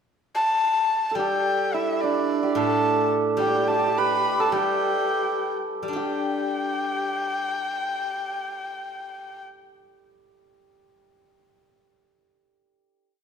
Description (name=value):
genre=chinese traditional, Chinese chamber ensemble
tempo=73-109 BPM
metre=2/4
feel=rubato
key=G gong mode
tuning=A4 = 440 Hz
part: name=warm erhu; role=melody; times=0.3-9.4 s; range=D5 to B5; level=-25 LUFS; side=left 2 dB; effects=none
part: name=hammered dulcimer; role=second line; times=1.1-9.5 s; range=D4 to B4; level=-26 LUFS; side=right 4 dB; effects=none
part: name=steel-string zither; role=accompaniment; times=1.2-11.9 s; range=A2 to G4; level=-28 LUFS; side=left 1 dB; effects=none
room=wet scoring stage reverb, RT60 1.6 s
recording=minimal, uncompressed stereo recording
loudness=-22 LUFS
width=side -6 dB against mid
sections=0.0-1.2 pickup bar; 1.2-5.9 A section; 5.9-9.1 final chord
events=slowing down 3.4-5.9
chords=none